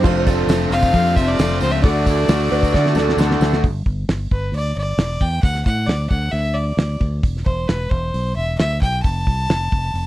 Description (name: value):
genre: folk rock and heartland rock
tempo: 133 BPM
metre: 4/4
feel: straight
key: unclear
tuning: A4 = 440 Hz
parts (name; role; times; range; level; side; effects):
- electric slide guitar; second line; 0.0-3.5 s; D4 to D5; -23 LUFS; right 5 dB; none
- bright concert grand piano; accompaniment; 0.0-3.6 s; D4 to D5; -30 LUFS; right 5 dB; none
- picked steel-string acoustic guitar; accompaniment; 0.0-3.6 s; D3 to A4; -22 LUFS; left 4 dB; none
- tonewheel organ; sustained chords; 0.0-3.6 s; D4 to D5; -31 LUFS; equal; none
- raw garage guitar; riff; 0.0-3.6 s; F2 to F#4; -23 LUFS; right 2 dB; overdrive
- fingered electric bass; bass; 0.0-10.1 s; E1 to D3; -21 LUFS; equal; none
- damped 70s drum kit; drums; 0.0-10.1 s; crash cymbal, hi-hat, kick drum, snare drum; -18 LUFS; equal; none
- tambourine; percussion; 0.0-3.6 s; none; -39 LUFS; left 3 dB; none
- bright fiddle; melody; 0.7-10.1 s; B4 to A5; -23 LUFS; left 1 dB; slapback echo
room: little or no reverb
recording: dry, close 1970s-style studio recording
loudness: -16 LUFS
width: side -14 dB against mid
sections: 0.0-3.6 A section; 3.6-10.1 B section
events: drum fill 2.7-3.6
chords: 0.0 F6; 1.8 D; 3.6 G5; 5.4 D5; 7.2 C/E; 9.0 F